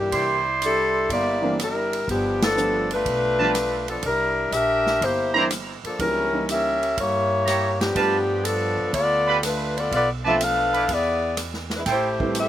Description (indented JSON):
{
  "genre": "jazz, big band swing",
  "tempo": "122 BPM",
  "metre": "4/4",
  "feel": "swing 69% on 8ths",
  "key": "G mixolydian",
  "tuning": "A4 = 440 Hz",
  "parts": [
    { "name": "warm saxophone section", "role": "melody", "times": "0.0-12.5 s", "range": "E3 to F5", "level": "-22 LUFS", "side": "left 1 dB", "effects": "none" },
    { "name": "upright bass", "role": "bass", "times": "0.0-12.5 s", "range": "G1 to G2", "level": "-32 LUFS", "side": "right 1 dB", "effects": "none" },
    { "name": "mellow trumpet section", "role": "stabs", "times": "0.1-12.1 s", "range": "E4 to C6", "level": "-24 LUFS", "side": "right 5 dB", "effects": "none" },
    { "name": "swinging big-band drum kit", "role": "drums", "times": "0.1-12.5 s", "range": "hi-hat, kick drum, ride cymbal, rim click, snare drum", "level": "-31 LUFS", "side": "right 2 dB", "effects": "none" },
    { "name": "warm baby grand piano", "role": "accompaniment", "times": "1.4-12.5 s", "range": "E3 to B4", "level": "-28 LUFS", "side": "right 2 dB", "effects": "none" }
  ],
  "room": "little or no reverb",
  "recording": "recorded outdoors, with no room sound",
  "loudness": "-20 LUFS",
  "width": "side -12 dB against mid",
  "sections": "0.0-12.5 A section",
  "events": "band accent 2.3",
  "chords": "0.1 C9; 2.1 G9; 4.0 C9; 6.0 C#dim7; 8.0 G9; 9.9 Bm7b5; 10.9 E7; 11.9 Am7"
}